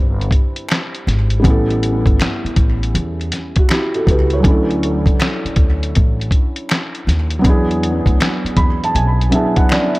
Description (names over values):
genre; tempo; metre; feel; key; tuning
lo-fi hip hop; 80 BPM; 4/4; swing 66% on 16ths; A major; A4 = 440 Hz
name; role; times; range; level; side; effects
felt-muted upright piano; accompaniment; 0.0-10.0 s; F#3 to B5; -19 LUFS; right 1 dB; cassette tape, tape echo
upright bass; bass; 0.0-9.3 s; G1 to E2; -18 LUFS; equal; none
lo-fi sampler-style drum kit; drums; 0.2-10.0 s; handclaps, hi-hat, kick drum, snare drum; -15 LUFS; equal; none
finger snaps; percussion; 0.7-9.9 s; none; -32 LUFS; left 1 dB; tape echo
room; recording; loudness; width
light reverb, small room ambience; echo-heavy mix; -13 LUFS; side -21 dB against mid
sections
0.0-10.0 A section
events
felt piano fill 8.2-10.0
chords
0.0 Cmaj9; 1.4 A7; 4.4 Dmaj7; 7.4 E7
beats
0.69 | 1.44 2.19 2.94 3.69 | 4.44 5.19 5.94 6.69 | 7.44 8.19 8.94 9.69